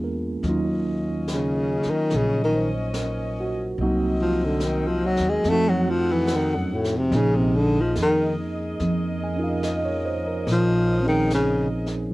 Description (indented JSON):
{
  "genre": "jazz ballad",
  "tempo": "72 BPM",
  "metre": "4/4",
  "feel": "swing 68% on 8ths",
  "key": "Bb minor",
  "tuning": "A4 = 441 Hz",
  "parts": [
    { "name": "tine electric piano", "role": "accompaniment", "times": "0.0-12.1 s", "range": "F3 to Ab5", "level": "-26 LUFS", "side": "right 2 dB", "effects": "medium stereo tremolo, cassette tape" },
    { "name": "upright bass", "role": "bass", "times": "0.0-12.1 s", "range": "Bb1 to F2", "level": "-27 LUFS", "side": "equal", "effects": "none" },
    { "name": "clear saxophone section", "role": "sustained chords", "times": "0.4-12.1 s", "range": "C4 to Gb5", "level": "-33 LUFS", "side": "left 1 dB", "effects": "cassette tape" },
    { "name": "jazz brush drum kit", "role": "drums", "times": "0.4-12.1 s", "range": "brushed snare drum, hi-hat, snare drum", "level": "-37 LUFS", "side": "left 1 dB", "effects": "cassette tape" },
    { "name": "mellow baritone saxophone", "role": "melody", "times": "1.3-11.7 s", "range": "Gb2 to A3", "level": "-22 LUFS", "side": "left 1 dB", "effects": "cassette tape" }
  ],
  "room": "moderate booth ambience, RT60 0.2 s",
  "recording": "home recording on cassette",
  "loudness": "-20 LUFS",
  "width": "side -19 dB against mid",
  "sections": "0.0-12.1 A section",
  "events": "baritone saxophone solo 0.0-12.1",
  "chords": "0.4 Ebm7; 3.8 Cm7b5; 5.5 F7b9; 7.1 Bbm11"
}